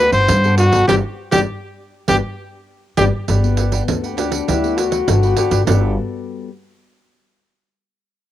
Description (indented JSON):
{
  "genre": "samba and choro",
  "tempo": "100 BPM",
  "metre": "4/4",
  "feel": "straight",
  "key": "G major",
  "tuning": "A4 = 440 Hz",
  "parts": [
    { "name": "warm trumpet", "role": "melody", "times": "0.0-3.0 s", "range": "F#4 to C5", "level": "-16 LUFS", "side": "left 1 dB", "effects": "cassette tape, plate reverb" },
    { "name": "cavaquinho", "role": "accompaniment", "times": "0.0-5.9 s", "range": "D4 to F#5", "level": "-27 LUFS", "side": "right 7 dB", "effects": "plate reverb" },
    { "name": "nylon-string guitar", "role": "accompaniment", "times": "0.0-6.5 s", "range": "D3 to A4", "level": "-25 LUFS", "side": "left 7 dB", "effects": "plate reverb" },
    { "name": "upright bass", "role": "bass", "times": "0.0-6.0 s", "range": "G1 to G2", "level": "-18 LUFS", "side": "equal", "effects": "none" },
    { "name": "pandeiro", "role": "percussion", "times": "0.1-5.8 s", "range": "none", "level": "-22 LUFS", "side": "right 7 dB", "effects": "none" },
    { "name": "dark trombone", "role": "second line", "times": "3.3-6.0 s", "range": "B3 to F#4", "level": "-21 LUFS", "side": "left 6 dB", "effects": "plate reverb" }
  ],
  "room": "moderate booth ambience, RT60 0.2 s",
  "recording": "home recording on cassette",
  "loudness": "-14 LUFS",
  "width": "side -12 dB against mid",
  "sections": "0.0-3.3 A section; 3.3-5.7 B section; 5.7-8.1 C section",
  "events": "band accent 0.9-3.3",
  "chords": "0.0 Gmaj9"
}